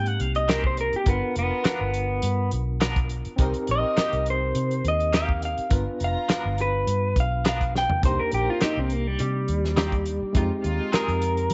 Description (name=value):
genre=straight-eighth soul blues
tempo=103 BPM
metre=4/4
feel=swing 54% on 16ths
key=C minor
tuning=A4 = 440 Hz
part: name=electric guitar through a small old amp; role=melody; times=0.0-11.5 s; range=G3 to G5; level=-28 LUFS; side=equal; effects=slapback echo
part: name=overdriven tine electric piano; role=accompaniment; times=0.0-11.5 s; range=Ab3 to B4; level=-35 LUFS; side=equal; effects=fast tremolo
part: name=vintage muted fingered electric bass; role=bass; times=0.0-11.5 s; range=F1 to F3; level=-29 LUFS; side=equal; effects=none
part: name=warm soul drum kit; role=drums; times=0.1-11.5 s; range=hi-hat, kick drum, snare drum, toms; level=-28 LUFS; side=equal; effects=none
part: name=twangy electric guitar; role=stabs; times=0.5-11.1 s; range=Eb3 to A#4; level=-35 LUFS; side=equal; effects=tremolo, slapback echo
part: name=dark chamber string section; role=sustained chords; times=1.1-11.2 s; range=Ab3 to A#5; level=-39 LUFS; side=equal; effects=none
room=light reverb, small room reverb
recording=nothing above 7.9 kHz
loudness=-24 LUFS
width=mono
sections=0.0-8.0 A section; 8.0-11.5 B section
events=drum fill 7.7; clean electric guitar solo 8.0-11.5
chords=0.0 Abmaj7; 1.1 G7#9; 3.4 Cm7; 5.7 G7#9; 8.0 Cm7; 10.4 Fm7